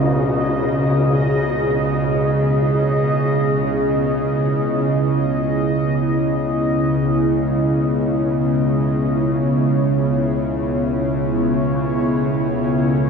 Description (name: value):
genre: dark ambient drone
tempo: free time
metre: none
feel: none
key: C# minor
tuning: A4 = 439 Hz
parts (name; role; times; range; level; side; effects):
- deep dark ambient pad; sustained chords; 0.0-13.1 s; C#3 to A4; -20 LUFS; equal; chorus, built-in reverb
- bowed-like drone; drone; 0.0-13.1 s; C#2 to C#3; -20 LUFS; right 1 dB; built-in reverb
- bubbling stepped-filter texture; texture; 0.0-13.1 s; C#5 to D#5; -26 LUFS; left 1 dB; chorus, built-in reverb
room: wet cathedral reverb, RT60 7.2 s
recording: none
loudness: -16 LUFS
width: side -5 dB against mid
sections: 0.0-13.1 A section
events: fade-out on synth texture 0.0-13.1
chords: 0.0 C#m; 8.9 Aadd9/C#